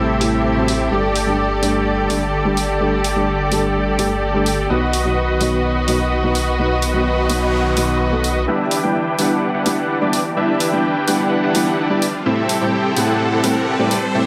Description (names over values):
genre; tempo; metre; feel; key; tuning
EDM, festival progressive house; 127 BPM; 4/4; straight; E minor; A4 = 442 Hz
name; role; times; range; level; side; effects
felt-muted upright piano; accompaniment; 0.0-14.3 s; G2 to A4; -23 LUFS; equal; tape echo
rich studio string section; sustained chords; 0.0-14.3 s; C3 to A4; -26 LUFS; equal; low-pass filter
dense compressed supersaw; riff; 0.0-14.3 s; C4 to G5; -22 LUFS; equal; low-pass filter, tape echo
saturated sub bass; bass; 0.0-8.5 s; G1 to B1; -26 LUFS; equal; none
electronic hi-hat; drums; 0.2-14.0 s; none; -27 LUFS; equal; overdrive, low-pass filter on hats
noise sweep and riser; sound effects; 7.1-14.3 s; none; -32 LUFS; equal; none
room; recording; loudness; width
moderate scoring stage reverb, RT60 1.8 s, small room ambience; faint mains hum; -18 LUFS; mono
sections
0.0-8.5 A section; 8.5-14.3 B section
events
noise sweep 7.1-8.5; build-up 8.5-14.3; riser 8.5-14.3; filter sweep on string section 8.5-14.3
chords
0.0 Am7; 0.9 Gsus2; 4.7 B; 8.5 Em7; 12.3 Am7